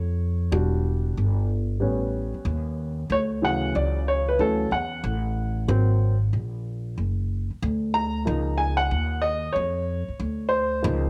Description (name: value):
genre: hip hop, jazz-hop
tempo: 93 BPM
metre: 4/4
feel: swing 63% on 16ths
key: unclear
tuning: A4 = 438 Hz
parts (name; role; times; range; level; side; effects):
- warm upright piano; accompaniment; 0.0-11.1 s; C#3 to Bb5; -28 LUFS; equal; cassette tape
- upright bass; bass; 0.0-11.1 s; E1 to F2; -27 LUFS; equal; none
room: light reverb, small room ambience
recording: home recording on cassette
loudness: -25 LUFS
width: mono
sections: 0.0-11.1 A section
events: upright piano solo 0.0-11.1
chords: 0.0 Eb7sus2 (rootless); 0.5 Em7; 1.8 A7; 3.1 Dmaj9#11; 5.7 Ab9; 8.3 Db69